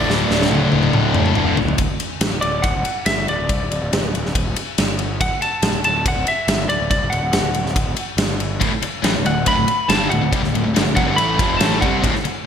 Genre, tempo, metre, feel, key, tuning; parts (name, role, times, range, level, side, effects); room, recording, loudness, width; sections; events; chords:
hard rock; 141 BPM; 4/4; straight; D mixolydian; A4 = 440 Hz
lightly driven lead guitar; melody; 0.0-12.0 s; D5 to B5; -22 LUFS; equal
high-gain distorted guitar; riff; 0.0-1.6, 8.6-12.3 s; D2 to C4; -22 LUFS; left 8 dB; distortion
sludgy distorted guitar; riff; 0.0-1.6, 8.6-12.3 s; D2 to C4; -25 LUFS; right 9 dB; overdrive
sludgy distorted guitar; riff; 0.0-1.8, 8.6-12.3 s; D2 to C4; -24 LUFS; equal; overdrive
fuzz picked electric bass; bass; 0.0-12.3 s; D1 to C2; -24 LUFS; equal; overdrive
big rock drum kit; drums; 0.1-12.3 s; kick drum, ride cymbal, snare drum, toms; -20 LUFS; equal; gated reverb
moderate lush hall reverb, RT60 1.7 s, studio ambience; bright 1980s-style digital production; -16 LUFS; side -8 dB against mid
0.0-1.8 A section; 1.8-12.5 B section
drum fill 0.1-1.8
0.0 D5; 1.8 N.C.; 5.2 D; 8.2 N.C.; 8.6 D5